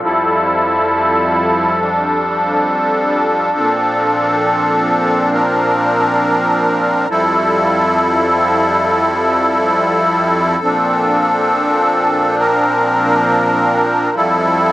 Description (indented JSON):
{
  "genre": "hip hop",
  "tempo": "free time",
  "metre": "none",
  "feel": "none",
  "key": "F major",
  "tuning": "A4 = 440 Hz",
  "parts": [
    { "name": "musette accordion", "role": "solo", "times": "0.0-14.7 s", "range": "F2 to Bb4", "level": "-12 LUFS", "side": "equal", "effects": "low-pass filter" }
  ],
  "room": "light reverb, studio reverb",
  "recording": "dark, warm production",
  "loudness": "-12 LUFS",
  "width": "side -16 dB against mid",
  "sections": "0.0-7.1 A section; 7.1-14.7 B section",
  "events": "none",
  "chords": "0.0 Fmaj7; 3.6 Bbmaj7; 7.1 Fmaj7; 10.6 Bbmaj7; 14.2 Fmaj7"
}